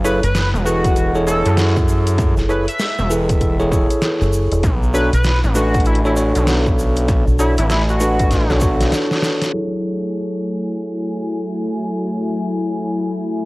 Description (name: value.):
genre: glitch hop.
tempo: 98 BPM.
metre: 4/4.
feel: swing 62% on 16ths.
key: F# minor.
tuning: A4 = 440 Hz.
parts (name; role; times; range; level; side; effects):
sync lead; melody; 0.0-8.5 s; E4 to E5; -23 LUFS; equal; chorus, cassette tape, tape echo.
bell-like tine electric piano; stabs; 0.0-13.5 s; F#3 to C#5; -21 LUFS; equal; sidechain pumping, low-pass filter, cassette tape, tape echo.
gritty driven synth bass; bass; 0.0-8.9 s; E1 to F#2; -18 LUFS; equal; distortion, tube saturation.
egg shaker; percussion; 0.0-9.5 s; none; -35 LUFS; equal; none.
deep dub fingered electric bass; bass; 0.2-7.6 s; E1 to B1; -17 LUFS; equal; tube saturation.
dubstep drum kit; drums; 0.2-9.5 s; hi-hat, snare drum; -24 LUFS; equal; cassette tape.
electronic kick drum; drums; 0.8-8.8 s; none; -18 LUFS; equal; cassette tape.
warm analog pad; sustained chords; 9.5-13.5 s; F#3 to G#5; -22 LUFS; left 1 dB; chorus, sidechain pumping, cassette tape.
room: light reverb.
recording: home recording on cassette, low-pass filter.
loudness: -15 LUFS.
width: side -21 dB against mid.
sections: 0.0-9.5 A section; 9.5-13.5 B section.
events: drum fill 8.3-9.5; break 8.9-9.5; band accent 9.4-9.7; filter sweep 9.5-13.5.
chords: 0.0 F#m9; 4.6 Bm7; 9.5 F#m9.